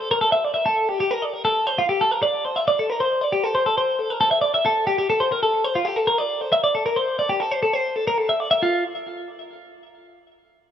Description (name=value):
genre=rock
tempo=272 BPM (eighths)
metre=9/8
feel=straight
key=unclear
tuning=A4 = 440 Hz
part: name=twelve-string electric guitar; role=solo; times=0.0-8.8 s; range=F4 to E5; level=-19 LUFS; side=equal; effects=digital delay
room=light reverb, digital ambience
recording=rough home demo mix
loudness=-19 LUFS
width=side -9 dB against mid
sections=0.0-8.6 A section; 8.6-10.6 B section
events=none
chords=none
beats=0.03 0.25 0.47 | 0.69 0.91 1.13 1.35 1.57 1.79 2.01 2.23 2.45 | 2.67 2.89 3.11 3.33 3.56 3.78 4.00 4.22 4.44 | 4.66 4.88 5.10 5.32 5.54 5.76 5.98 6.20 6.42 | 6.64 6.86 7.08 7.30 7.52 7.75 7.96 8.19 8.40 | 8.63